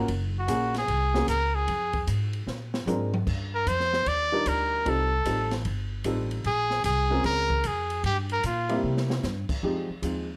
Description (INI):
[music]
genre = jazz, small-group swing and bop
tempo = 151 BPM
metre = 4/4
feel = swing 65% on 8ths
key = F minor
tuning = A4 = 440 Hz
[part]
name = warm upright piano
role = accompaniment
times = 0.0-10.3 s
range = F3 to Bb4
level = -32 LUFS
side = equal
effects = none
[part]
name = upright bass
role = bass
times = 0.0-10.4 s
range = Gb1 to C3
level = -32 LUFS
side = equal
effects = none
[part]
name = open jazz drum kit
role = drums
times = 0.1-10.1 s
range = crash cymbal, hi-hat, kick drum, ride cymbal, snare drum, toms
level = -37 LUFS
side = equal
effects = none
[part]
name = brilliant trumpet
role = melody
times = 0.4-8.8 s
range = F4 to D5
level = -28 LUFS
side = equal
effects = none
[sound]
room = light reverb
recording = none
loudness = -27 LUFS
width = mono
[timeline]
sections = 0.0-9.6 A section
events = drum fill 2.5-3.3, 8.8-9.2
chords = 0.1 Gbmaj9; 1.7 Fm; 2.5 Bb7; 3.3 Ebmaj9; 4.9 F7; 6.4 Bbm7; 8.0 C7; 9.6 Fm7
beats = | 0.09 0.48 0.88 1.28 | 1.68 2.07 2.47 2.87 | 3.27 3.66 4.06 4.46 | 4.86 5.25 5.65 6.05 | 6.45 6.84 7.24 7.64 | 8.04 8.44 8.83 9.23 | 9.63 10.03